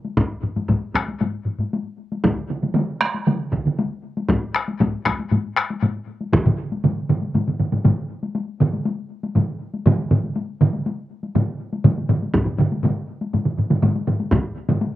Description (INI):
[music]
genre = japanese traditional, taiko drum ensemble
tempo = 119 BPM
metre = 4/4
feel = straight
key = none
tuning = none
[part]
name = solo taiko drums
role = percussion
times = 0.0-14.9 s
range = none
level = -25 LUFS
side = left 4 dB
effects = none
[part]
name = taiko ensemble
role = percussion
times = 0.2-14.8 s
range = none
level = -21 LUFS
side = left 2 dB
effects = none
[part]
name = taiko ensemble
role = percussion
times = 0.2-6.5, 12.3-14.4 s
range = none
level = -22 LUFS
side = right 1 dB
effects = none
[part]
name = taiko ensemble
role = percussion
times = 2.2-14.8 s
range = none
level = -21 LUFS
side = right 3 dB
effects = none
[sound]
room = light reverb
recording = recorded outdoors, with no room sound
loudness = -19 LUFS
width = side -14 dB against mid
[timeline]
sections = 0.2-8.4 A section; 8.4-15.0 B section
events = speeding up 0.0-15.0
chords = none